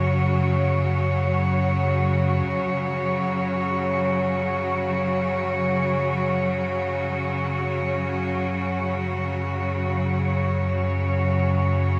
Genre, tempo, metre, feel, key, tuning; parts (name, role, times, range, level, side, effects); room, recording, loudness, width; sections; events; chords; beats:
dark ambient drone; free time; A4 = 440 Hz
rich symphonic cello section; sustained chords; 0.0-12.0 s; C#3 to C#5; -26 LUFS; equal
deep rumbling drone; drone; 0.0-12.0 s; F#2 to C#3; -28 LUFS; equal; built-in reverb
wet spring reverb, RT60 2.3 s; -24 LUFS; mono
0.0-2.5 A section; 2.5-12.0 B section
filter sweep on synth drone 2.5-12.0
0.0 F#5
free time